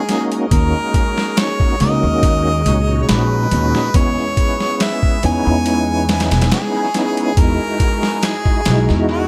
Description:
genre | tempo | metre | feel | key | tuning
trip hop | 70 BPM | 4/4 | swing 53% on 16ths | Eb phrygian | A4 = 440 Hz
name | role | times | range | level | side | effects
warm harmonica | melody | 0.0-9.3 s | F#4 to Ab5 | -23 LUFS | equal | tape echo
bright tonewheel organ | accompaniment | 0.0-9.3 s | Bb2 to Gb4 | -22 LUFS | equal | chorus vibrato, slow rotary speaker, tremolo, tape echo
deep dark ambient pad | sustained chords | 0.0-9.3 s | Ab3 to Ab4 | -29 LUFS | equal | chorus, built-in reverb
boom bap sampler-style drum kit | drums | 0.1-9.1 s | hi-hat, kick drum, snare drum | -20 LUFS | equal | tape echo
upright bass | bass | 0.5-9.3 s | Fb1 to Fb2 | -20 LUFS | equal | none
room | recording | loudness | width
light reverb | echo-heavy mix | -16 LUFS | mono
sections
0.0-9.3 A section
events
none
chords
0.0 Ebm7; 3.9 Dbm9/Fb; 7.4 Emaj9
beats
| 0.52 1.37 2.23 3.09 | 3.94 4.80 5.66 6.52 | 7.37 8.23 9.09

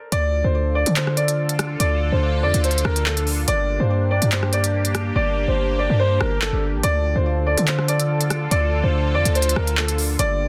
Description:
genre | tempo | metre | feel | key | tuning
hip hop, drill | 143 BPM | 4/4 | half-time | D minor | A4 = 440 Hz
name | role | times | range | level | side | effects
warm concert grand piano | melody | 0.1-10.5 s | A4 to D5 | -25 LUFS | equal | low-pass filter, delay
sweeping resonant pad | sustained chords | 0.1-10.5 s | D3 to A4 | -30 LUFS | equal | chorus
hard-hitting 808-style bass | bass | 0.1-10.5 s | G1 to D3 | -23 LUFS | equal | none
drill drum kit | drums | 0.1-10.3 s | handclaps, hi-hat, rim click | -26 LUFS | equal | none
room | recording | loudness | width
little or no reverb | dense, heavily limited modern master | -20 LUFS | mono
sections
0.1-10.5 A section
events
hi-hats muted 5.2-6.8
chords
0.1 Dm; 3.5 Gm; 6.8 Dm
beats
| 0.12 0.54 0.96 1.38 | 1.80 2.22 2.64 3.06 | 3.48 3.90 4.32 4.74 | 5.16 5.58 6.00 6.42 | 6.83 7.25 7.67 8.09 | 8.51 8.93 9.35 9.77 | 10.19

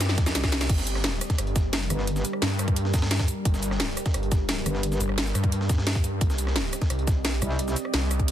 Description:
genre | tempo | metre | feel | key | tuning
dark technical drum and bass | 174 BPM | 4/4 | straight | G minor | A4 = 440 Hz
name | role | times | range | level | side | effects
deep dark ambient pad | sustained chords | 0.0-8.3 s | G3 to Eb5 | -32 LUFS | equal | chorus, built-in reverb, sidechain pumping
wide detuned saw bass | bass | 0.0-8.3 s | G1 to G2 | -27 LUFS | equal | chorus, tube saturation, sidechain pumping
breakbeat sampler-style drum kit | drums | 0.0-8.3 s | hi-hat, snare drum | -36 LUFS | equal | high-pass filter on hats, high-pass filter on snare
drum and bass drum kit | drums | 0.0-8.3 s | crash cymbal, hi-hat, rim click, shaker, snare drum | -29 LUFS | equal | overdrive
bright studio string section | texture | 0.0-0.7 s | C4 to D6 | -45 LUFS | left 1 dB | none
electronic kick drum | drums | 0.2-8.3 s | none | -24 LUFS | equal | overdrive
metallic wobble bass | bass | 1.9-2.2, 4.7-5.0, 7.4-7.8 s | G1 to C2 | -26 LUFS | equal | chorus
room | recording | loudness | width
little or no reverb | dense, heavily limited modern master | -23 LUFS | side -11 dB against mid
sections
0.7-8.3 A section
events
drum fill 0.0-0.7; drop 0.7-8.3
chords
0.0 Cm; 0.7 Gm; 6.2 Cm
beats
0.01 0.35 | 0.69 1.04 1.39 1.73 | 2.07 2.42 2.76 3.11 | 3.45 3.80 4.14 4.49 | 4.83 5.18 5.52 5.87 | 6.21 6.56 6.90 7.25 | 7.59 7.94 8.28

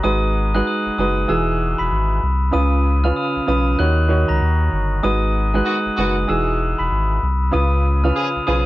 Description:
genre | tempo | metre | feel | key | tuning
hip hop | 96 BPM | 4/4 | swing 62% on 16ths | unclear | A4 = 442 Hz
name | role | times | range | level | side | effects
glockenspiel with hard plastic mallets | melody | 0.0-8.7 s | Bb5 to Gb7 | -22 LUFS | left 2 dB | high-pass filter, low-pass filter
warm upright piano | accompaniment | 0.0-8.7 s | Db3 to Db5 | -21 LUFS | right 3 dB | cassette tape, high-pass filter, low-pass filter
warm sub bass | bass | 0.0-8.7 s | E1 to Eb2 | -19 LUFS | equal | none
warm horn section | stabs | 5.7-8.7 s | Eb3 to Ab4 | -26 LUFS | equal | high-pass filter, low-pass filter, analog delay
room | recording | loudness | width
light reverb | worn, warbling old tape, cassette tape, warbly pitch drift | -16 LUFS | side -17 dB against mid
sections
0.0-8.7 A section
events
none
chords
0.0 Abm7; 1.3 Emaj9; 2.5 Db7; 3.8 Ebm7; 5.0 Abm7; 6.3 Emaj9; 7.5 Db7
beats
| 0.04 0.66 1.28 1.91 | 2.54 3.16 3.79 4.41 | 5.04 5.66 6.29 6.91 | 7.54 8.16

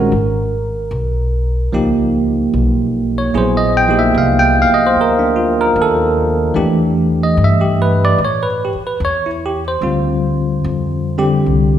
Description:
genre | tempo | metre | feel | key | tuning
jazz ballad | 74 BPM | 4/4 | swing 68% on 8ths | unclear | A4 = 440 Hz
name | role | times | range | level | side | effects
bell-like tine electric piano | accompaniment | 0.0-11.8 s | D3 to G5 | -14 LUFS | right 1 dB | medium stereo tremolo
upright bass | bass | 0.0-11.8 s | Ab1 to A2 | -19 LUFS | left 1 dB | none
room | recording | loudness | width
wet recital hall reverb, RT60 1.6 s | recorded in a church or concert hall | -13 LUFS | side -10 dB against mid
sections
0.0-11.8 A section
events
none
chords
0.1 Abm; 1.7 C#9; 3.4 Ebmaj13; 6.6 Em7; 8.2 A5; 9.8 Dm7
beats
| 0.12 0.93 1.74 2.54 | 3.35 4.15 4.96 5.76 | 6.57 7.38 8.19 9.01 | 9.83 10.64 11.46

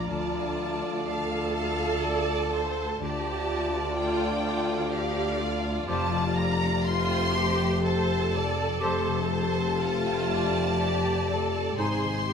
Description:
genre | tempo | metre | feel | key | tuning
cinematic | 62 BPM | 3/4 | rubato | unclear | A4 = 440 Hz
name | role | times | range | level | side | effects
rich studio violin section | melody | 0.0-12.3 s | F5 to C6 | -32 LUFS | left 2 dB | none
concert flute | second line | 0.0-12.2 s | Ab5 to Bb5 | -39 LUFS | equal | none
rich studio violin section | second line | 0.0-12.3 s | A4 to F5 | -34 LUFS | equal | none
warm cor anglais | second line | 0.0-12.2 s | C5 to D5 | -39 LUFS | right 4 dB | none
rich studio viola section | accompaniment | 0.0-12.3 s | F4 to A4 | -33 LUFS | right 4 dB | none
dark French horn section | sustained chords | 0.0-12.3 s | A3 to G4 | -32 LUFS | left 5 dB | none
concert harp | arpeggios | 0.0-12.3 s | F2 to Bb5 | -36 LUFS | left 10 dB | none
rich studio cello section | bass | 0.0-12.3 s | D2 to Ab2 | -33 LUFS | right 1 dB | none
rich studio double bass section | bass | 0.0-12.3 s | F1 to D2 | -34 LUFS | right 4 dB | none
mellow clarinet | second line | 0.1-12.2 s | Eb4 to G4 | -37 LUFS | left 2 dB | none
room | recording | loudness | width
moderate scoring stage reverb, RT60 1.9 s | none | -24 LUFS | side -6 dB against mid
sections
0.0-12.3 A section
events
none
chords
0.1 Dm; 5.9 Fadd9; 11.8 Ab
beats
| 0.10 1.07 2.04 | 3.01 3.96 4.92 | 5.87 6.84 7.83 | 8.81 9.80 10.79 | 11.78

